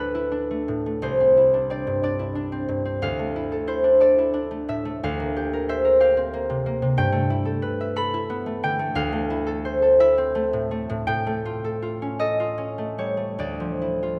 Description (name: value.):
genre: classical, solo harp piece.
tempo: 47-63 BPM (dotted quarters).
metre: 6/8.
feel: rubato.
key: D dorian.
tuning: A4 = 440 Hz.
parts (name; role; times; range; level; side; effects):
concert harp; solo; 0.0-14.2 s; C2 to B5; -23 LUFS; equal; none.
room: moderate concert hall reverb, RT60 1.9 s.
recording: none.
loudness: -23 LUFS.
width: mono.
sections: 0.0-14.2 A section.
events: none.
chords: 0.0 Dmadd9; 1.0 Cadd9; 3.0 Dmadd9; 5.0 C9sus4/D; 7.0 G69; 9.0 Dm9; 11.1 Aaug7; 13.4 Dmadd9.